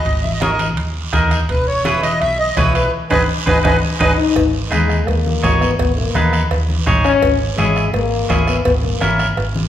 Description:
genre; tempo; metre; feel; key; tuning
latin, cumbia; 168 BPM; 4/4; straight; G# minor; A4 = 443 Hz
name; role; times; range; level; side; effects
accordion; melody; 0.0-4.1 s; B4 to G#5; -19 LUFS; equal; light tremolo tuning
vintage muted fingered electric bass; bass; 0.1-9.7 s; E1 to D#2; -20 LUFS; equal; none
bombo; percussion; 0.1-9.6 s; none; -22 LUFS; right 1 dB; none
congas; percussion; 0.1-9.6 s; none; -23 LUFS; left 2 dB; none
guiro; percussion; 0.1-9.7 s; none; -29 LUFS; right 6 dB; none
timbales and cowbell; percussion; 0.1-9.6 s; none; -26 LUFS; right 3 dB; none
clean electric guitar; accompaniment; 0.4-9.3 s; C#4 to C#5; -20 LUFS; right 1 dB; none
mellow French horn; second line; 4.2-9.3 s; G#3 to D#4; -19 LUFS; left 6 dB; none
room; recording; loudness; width
wet recital hall reverb, RT60 1.5 s; recorded in a church or concert hall; -14 LUFS; side -11 dB against mid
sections
0.0-4.4 A section; 4.4-9.7 B section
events
band accent 2.9-4.4; drum fill 3.8-4.4; French horn solo 4.4-9.7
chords
0.0 G#5; 1.5 E; 2.9 G#m; 4.4 G#madd9; 7.2 C#m/G#

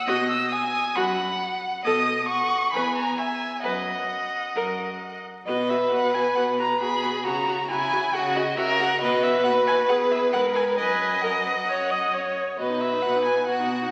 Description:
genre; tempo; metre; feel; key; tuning
quick classical-period movement for string quartet; 135 BPM; 4/4; straight; B major; A4 = 440 Hz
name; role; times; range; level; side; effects
warm violin; melody; 0.0-13.9 s; D#5 to E6; -30 LUFS; equal; none
rich violin; second line; 0.0-13.9 s; E4 to G#5; -27 LUFS; equal; none
rich viola; accompaniment; 0.1-13.9 s; D#4 to D#5; -32 LUFS; equal; none
clear cello; bass; 0.1-13.9 s; D#2 to C#3; -35 LUFS; equal; none
room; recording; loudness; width
wet scoring stage reverb, RT60 2.0 s; very old 78 rpm record, vinyl crackle; -24 LUFS; mono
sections
0.0-5.5 A section; 5.5-13.9 B section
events
none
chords
0.1 B; 1.8 B7; 2.7 E; 3.6 B/F#; 4.6 F#; 5.5 B5; 7.2 F#7/C#; 9.0 B; 9.9 E; 10.8 B/F#; 11.7 F#5; 12.6 B

